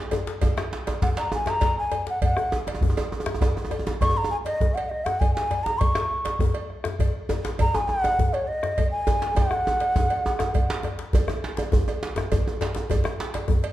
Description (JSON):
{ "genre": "west african traditional, West African drum ensemble", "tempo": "134 BPM (dotted quarters)", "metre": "12/8", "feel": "straight", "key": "F# major pentatonic", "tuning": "A4 = 436 Hz", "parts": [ { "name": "cowbell", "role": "percussion", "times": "0.1-13.7 s", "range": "none", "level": "-36 LUFS", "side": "right 4 dB", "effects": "none" }, { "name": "djembe", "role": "percussion", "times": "0.1-13.7 s", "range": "none", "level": "-29 LUFS", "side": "left 4 dB", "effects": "none" }, { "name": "djembe", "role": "percussion", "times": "0.1-13.5 s", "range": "none", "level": "-28 LUFS", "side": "right 2 dB", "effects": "none" }, { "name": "bombo", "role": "percussion", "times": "0.4-13.7 s", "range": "none", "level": "-26 LUFS", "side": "right 1 dB", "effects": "none" }, { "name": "mellow bansuri", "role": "melody", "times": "1.0-10.8 s", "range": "C#5 to C#6", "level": "-25 LUFS", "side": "equal", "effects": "none" } ], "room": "moderate recital hall reverb, RT60 1.5 s", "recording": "dark, warm production", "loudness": "-22 LUFS", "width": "side -14 dB against mid", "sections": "0.0-11.1 A section; 11.1-13.7 B section", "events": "drum fill 9.4-11.1", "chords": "none" }